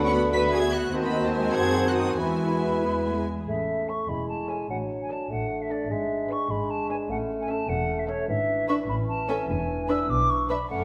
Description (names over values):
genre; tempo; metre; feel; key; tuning
quick classical-period movement for symphony orchestra; 99 BPM (dotted quarters); 6/8; rubato; A major; A4 = 440 Hz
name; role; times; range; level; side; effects
warm chamber violin section; melody; 0.0-10.8 s; C#5 to B6; -39 LUFS; equal; none
dark chamber violin section; second line; 0.0-10.8 s; A4 to F#5; -38 LUFS; equal; none
mellow clarinet; second line; 0.0-10.8 s; C#4 to F#4; -38 LUFS; equal; none
silver concert flute; second line; 0.0-10.8 s; C#5 to E6; -32 LUFS; equal; none
warm cor anglais; second line; 0.0-3.2 s; B4 to B#4; -36 LUFS; equal; none
dark bassoon; accompaniment; 0.0-10.8 s; D3 to A3; -33 LUFS; equal; none
dark symphonic viola section; accompaniment; 0.0-10.8 s; G#3 to G#4; -35 LUFS; equal; none
mellow French horn section; sustained chords; 0.0-3.3 s; B3 to F#4; -32 LUFS; equal; none
dark chamber double bass section; bass; 0.0-10.8 s; E1 to F#2; -34 LUFS; equal; none
rich chamber cello section; bass; 0.0-10.8 s; E2 to B4; -36 LUFS; equal; none
room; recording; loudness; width
wet concert hall reverb, RT60 1.8 s; none; -26 LUFS; mono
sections
0.0-3.5 A section; 3.5-10.8 B section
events
none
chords
0.0 Bm/D; 0.9 D#dim7; 2.2 E; 3.5 A; 4.7 D/A; 5.9 E7/G#; 7.1 A; 8.3 E7/G#; 8.9 A; 9.5 E7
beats
0.34 | 0.94 1.56 | 2.19 2.84 | 3.48 4.09 | 4.70 5.31 | 5.91 6.51 | 7.10 7.69 | 8.29 8.89 | 9.49 10.09 | 10.70